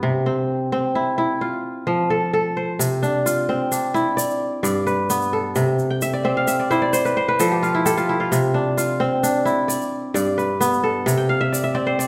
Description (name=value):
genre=west african traditional, West African string and xylophone music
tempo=87 BPM (dotted quarters)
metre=12/8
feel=straight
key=C major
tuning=A4 = 439 Hz
part: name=kora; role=arpeggios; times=0.0-12.1 s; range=G2 to G5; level=-21 LUFS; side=equal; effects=none
part: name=egg shaker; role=percussion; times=2.8-12.1 s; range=none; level=-31 LUFS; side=equal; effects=none
room=wet recital hall reverb, RT60 1.3 s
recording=recorded in a church or concert hall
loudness=-21 LUFS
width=mono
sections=0.0-2.8 A section; 2.8-12.1 B section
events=kora fill 5.9-8.3, 11.2-12.1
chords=0.0 C; 1.4 F; 2.8 C; 4.2 G; 5.6 C; 6.9 F; 8.3 C; 9.7 G; 11.1 C